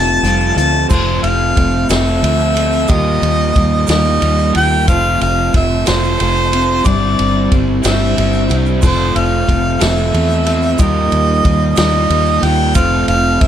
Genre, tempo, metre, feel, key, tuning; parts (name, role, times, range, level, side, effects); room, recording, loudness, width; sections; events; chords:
folk rock and heartland rock; 61 BPM (dotted quarters); 6/8; straight; A4 = 435 Hz
warm harmonica; melody; 0.0-13.5 s; C5 to A5; -16 LUFS; right 1 dB
clear baby grand piano; accompaniment; 0.0-13.5 s; E4 to Eb5; -31 LUFS; right 4 dB
picked steel-string acoustic guitar; accompaniment; 0.0-13.5 s; Eb3 to C5; -22 LUFS; left 5 dB
crunchy overdriven guitar; riff; 0.0-13.5 s; Eb3 to Bb4; -18 LUFS; right 1 dB
fingered electric bass; bass; 0.0-13.5 s; F1 to E2; -17 LUFS; equal
egg shaker; percussion; 0.1-13.2 s; -32 LUFS; right 18 dB
vintage drum kit; drums; 0.2-13.5 s; crash cymbal, hi-hat, kick drum, ride cymbal, snare drum; -19 LUFS; equal
light reverb, small room ambience; -11 LUFS; side -10 dB against mid
0.9-13.5 A section
0.0 Fadd9; 0.9 Fmaj7; 2.9 Ebadd9; 4.9 F; 6.9 Cadd9/G; 8.8 Fmaj7; 10.8 Ebadd9; 12.8 F